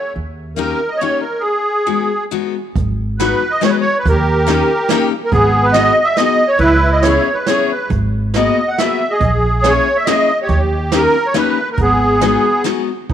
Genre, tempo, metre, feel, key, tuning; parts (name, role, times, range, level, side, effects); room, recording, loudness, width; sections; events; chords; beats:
musette waltz; 139 BPM; 3/4; rubato; G# minor; A4 = 440 Hz
musette accordion; melody; 0.0-13.1 s; B3 to F#5; -14 LUFS; right 1 dB
upright bass; bass; 0.2-0.7, 2.8-13.1 s; G#1 to D#2; -18 LUFS; right 1 dB; tube saturation
picked steel-string acoustic guitar; accompaniment; 0.6-12.9 s; G#3 to G#4; -20 LUFS; left 11 dB
jazz brush drum kit; drums; 2.8-13.1 s; hi-hat, kick drum, snare drum; -22 LUFS; right 6 dB
moderate echo chamber reverb, RT60 1.7 s, small room ambience; 1960s-style stereo with parts hard left and right; -12 LUFS; side -10 dB against mid
0.0-2.7 A section; 2.7-13.1 A section
0.1 D#7; 1.4 G#m7; 4.0 D#7; 5.3 G#m7; 6.6 C#m7; 7.9 G#m9; 9.2 A#m7b5; 10.5 D#7; 11.8 G#m7
| 0.13 0.56 0.99 | 1.42 1.85 2.30 | 2.75 3.19 3.62 | 4.05 4.47 4.89 | 5.32 5.74 6.17 | 6.60 7.04 7.48 | 7.92 8.35 8.79 | 9.22 9.65 10.07 | 10.50 10.92 11.35 | 11.78 12.21 12.65 | 13.10